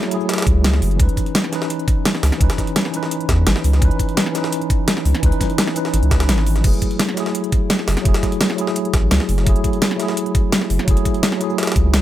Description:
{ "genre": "liquid drum and bass", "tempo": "170 BPM", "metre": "4/4", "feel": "straight", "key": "F# minor", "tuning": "A4 = 440 Hz", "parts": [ { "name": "mellow tine electric piano", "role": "accompaniment", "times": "0.0-12.0 s", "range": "E3 to B4", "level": "-22 LUFS", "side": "equal", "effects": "fast stereo tremolo, tape echo" }, { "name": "jungle sampler-style drum kit", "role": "drums", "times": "0.0-12.0 s", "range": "hi-hat, snare drum", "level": "-25 LUFS", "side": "equal", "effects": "high-pass filter on snare, high-pass filter on hats" }, { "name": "pop drum kit", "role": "drums", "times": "0.0-12.0 s", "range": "crash cymbal, hi-hat, shaker, snare drum", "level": "-22 LUFS", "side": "equal", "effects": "none" }, { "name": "saturated sub bass", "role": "bass", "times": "0.5-12.0 s", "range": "F#1 to E2", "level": "-16 LUFS", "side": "equal", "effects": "none" }, { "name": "electronic kick drum", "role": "drums", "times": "0.5-11.8 s", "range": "none", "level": "-18 LUFS", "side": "equal", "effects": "none" } ], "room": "digital ambience", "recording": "none", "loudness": "-15 LUFS", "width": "side -13 dB against mid", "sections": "0.0-12.0 A section", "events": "kick drops out 6.3-6.6", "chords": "0.0 F#m9; 1.0 C#m9; 6.6 F#m9", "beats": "0.29 0.64 | 0.99 1.35 1.70 2.05 | 2.41 2.76 3.11 3.47 | 3.82 4.17 4.52 4.88 | 5.23 5.58 5.94 6.29 | 6.64 7.00 7.35 7.70 | 8.05 8.41 8.76 9.11 | 9.47 9.82 10.17 10.52 | 10.88 11.23 11.58 11.94" }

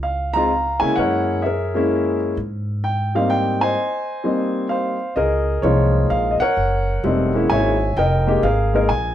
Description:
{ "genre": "jazz piano trio", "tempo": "129 BPM", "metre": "3/4", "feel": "swing 66% on 8ths", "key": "unclear", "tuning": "A4 = 439 Hz", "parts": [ { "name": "warm grand piano", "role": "melody", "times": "0.0-9.1 s", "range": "F3 to Bb5", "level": "-18 LUFS", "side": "left 1 dB", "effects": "plate reverb" }, { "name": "upright bass", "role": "bass", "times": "0.0-9.1 s", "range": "Fb1 to Db3", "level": "-22 LUFS", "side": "equal", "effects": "none" } ], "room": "light reverb", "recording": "none", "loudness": "-17 LUFS", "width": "side -11 dB against mid", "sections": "0.0-5.2 A section; 5.2-9.1 B section", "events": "none", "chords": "0.0 Db; 1.0 Gb9; 2.4 Abmaj7; 5.2 Db69; 6.6 Gb9; 8.0 Fm11", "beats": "0.04 0.51 | 0.97 1.44 1.91 | 2.37 2.84 3.31 | 3.77 4.24 4.71 | 5.17 5.64 6.11 | 6.57 7.04 7.50 | 7.97 8.44 8.90" }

